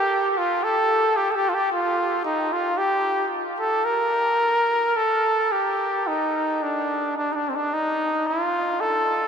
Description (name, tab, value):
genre	celtic folk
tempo	55 BPM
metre	4/4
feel	rubato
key	unclear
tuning	A4 = 440 Hz
part	clear trumpet	solo	0.0-9.3 s	C4 to Bb4	-20 LUFS	equal	none
room	wet huge ambient reverb, RT60 8.4 s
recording	in a vast, echoing space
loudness	-20 LUFS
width	side -7 dB against mid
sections	0.0-9.3 A section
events	none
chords	none